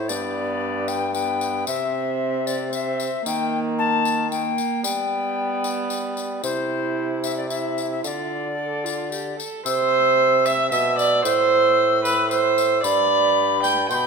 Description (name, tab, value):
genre	classical, renaissance-style consort dance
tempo	113 BPM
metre	3/4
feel	straight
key	unclear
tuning	A4 = 440 Hz
part	alto recorder	melody	0.0-14.1 s	C5 to E6	-24 LUFS	left 8 dB	none
part	warm viola	second line	0.0-14.1 s	Bb3 to G5	-22 LUFS	right 5 dB	none
part	warm bassoon	bass	0.0-14.1 s	G2 to G3	-28 LUFS	equal	none
part	tambourine	percussion	0.1-14.1 s	none	-32 LUFS	left 8 dB	none
room	moderate recital hall reverb, RT60 1.5 s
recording	minimal, uncompressed stereo recording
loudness	-19 LUFS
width	side -5 dB against mid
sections	0.0-9.7 A section; 9.7-14.1 A section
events	none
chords	0.1 G; 1.7 C; 3.3 Eb; 4.8 G; 6.4 C; 8.0 Dm; 9.7 C; 11.2 Am; 12.8 G